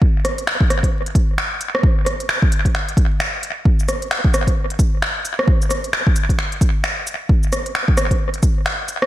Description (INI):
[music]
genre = future garage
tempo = 132 BPM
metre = 4/4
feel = swing 60% on 16ths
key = none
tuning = none
[part]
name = electronic kick drum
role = drums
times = 0.0-8.5 s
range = none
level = -16 LUFS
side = equal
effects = overdrive
[part]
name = organic electronic drum kit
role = drums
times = 0.2-9.1 s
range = cabasa, finger snaps, hi-hat, rim click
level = -21 LUFS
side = equal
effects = overdrive, analog delay
[sound]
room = little or no reverb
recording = echo-heavy mix, vinyl crackle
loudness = -16 LUFS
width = side -14 dB against mid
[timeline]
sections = 0.0-9.1 A section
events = none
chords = none